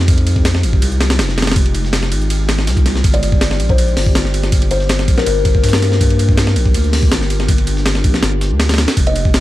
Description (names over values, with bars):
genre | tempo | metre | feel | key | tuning
drum and bass, jungle | 162 BPM | 4/4 | straight | unclear | A4 = 442 Hz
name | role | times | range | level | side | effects
saturated sub bass | bass | 0.0-9.4 s | F1 to G2 | -16 LUFS | equal | tube saturation
breakbeat sampler-style drum kit | drums | 0.1-9.4 s | hi-hat, kick drum, ride cymbal, snare drum | -15 LUFS | equal | none
breakbeat sampler-style drum kit | drums | 0.1-9.4 s | hi-hat, snare drum | -29 LUFS | equal | none
kalimba | melody | 3.1-5.3, 9.1-9.3 s | Bb4 to Eb5 | -22 LUFS | left 5 dB | dub echo
room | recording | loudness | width
digital ambience | dry, gritty hardware recording, vinyl crackle | -12 LUFS | side -15 dB against mid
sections
0.0-9.4 A section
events
none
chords
0.0 Fm9; 3.0 Gm7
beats
| 0.08 0.45 0.82 1.19 | 1.56 1.93 2.30 2.67 | 3.04 3.41 3.79 4.16 | 4.53 4.90 5.27 5.64 | 6.01 6.38 6.75 7.12 | 7.49 7.86 8.23 8.60 | 8.97 9.34